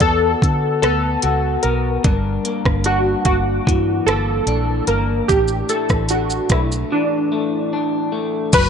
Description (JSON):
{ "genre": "indie pop, bedroom pop", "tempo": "74 BPM", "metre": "4/4", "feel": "straight", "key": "unclear", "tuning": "A4 = 440 Hz", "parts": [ { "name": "warm analog keys", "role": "melody", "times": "0.0-8.7 s", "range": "D4 to B4", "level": "-20 LUFS", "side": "equal", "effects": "ensemble chorus, analog delay" }, { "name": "electric guitar through a small old amp", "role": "accompaniment", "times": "0.0-8.7 s", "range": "G2 to F#4", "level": "-22 LUFS", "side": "left 4 dB", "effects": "analog chorus, warbly pitch drift" }, { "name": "vintage muted fingered electric bass", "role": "bass", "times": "0.0-8.7 s", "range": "F#1 to D3", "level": "-21 LUFS", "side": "equal", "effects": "none" }, { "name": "organic electronic drum kit", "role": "drums", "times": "0.0-8.7 s", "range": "crash cymbal, hi-hat, kick drum, rim click, shaker", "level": "-19 LUFS", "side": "right 1 dB", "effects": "none" } ], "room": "light reverb, digital ambience", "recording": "dark, warm production, nothing above 10.7 kHz", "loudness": "-16 LUFS", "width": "side -7 dB against mid", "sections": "0.0-8.5 A section", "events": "break 6.9-8.5", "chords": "0.0 D6; 2.0 Gm6; 5.3 Asus4", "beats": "0.42 1.24 | 2.04 2.86 3.67 4.48 | 5.29 6.10 6.91 7.72 | 8.53" }